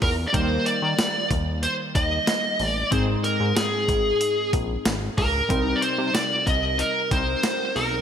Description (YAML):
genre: 1980s-style pop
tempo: 93 BPM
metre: 4/4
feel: straight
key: Eb major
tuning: A4 = 440 Hz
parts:
  - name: high-gain lead guitar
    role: melody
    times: 0.0-8.0 s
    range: Ab4 to Eb5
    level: -23 LUFS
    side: equal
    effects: distortion
  - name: glassy digital keys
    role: accompaniment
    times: 0.0-8.0 s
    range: Ab2 to Bb4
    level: -28 LUFS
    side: left 1 dB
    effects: chorus, phaser
  - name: chorused synth bass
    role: bass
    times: 0.0-8.0 s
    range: Ab1 to Eb3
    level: -27 LUFS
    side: equal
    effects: none
  - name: clean 12-bit digital drum machine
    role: drums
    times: 0.0-7.9 s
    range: hi-hat, kick drum, snare drum, tambourine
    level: -26 LUFS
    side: equal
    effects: gated reverb
room: moderate lush hall reverb, RT60 2.0 s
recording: bright 1980s-style digital production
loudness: -20 LUFS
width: side -8 dB against mid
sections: 0.0-8.0 A section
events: none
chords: 0.3 Eb; 2.9 Ab; 5.5 Cm7